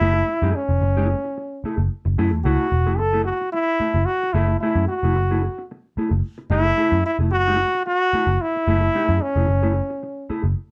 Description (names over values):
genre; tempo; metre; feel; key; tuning
funk; 111 BPM; 4/4; straight; F# minor; A4 = 440 Hz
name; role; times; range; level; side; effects
clear trombone; melody; 0.0-10.3 s; C#4 to A4; -24 LUFS; equal; none
mellow electric guitar; accompaniment; 0.0-10.5 s; A3 to G#4; -28 LUFS; equal; analog chorus
vintage muted picked electric bass; bass; 0.0-10.5 s; E1 to F#2; -23 LUFS; equal; none
room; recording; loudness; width
light reverb; none; -21 LUFS; mono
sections
0.0-10.7 A section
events
none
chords
0.0 F#m9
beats
0.28 | 0.82 1.37 1.91 2.45 | 2.99 3.54 4.08 4.62 | 5.16 5.70 6.24 6.78 | 7.32 7.87 8.41 8.95 | 9.49 10.03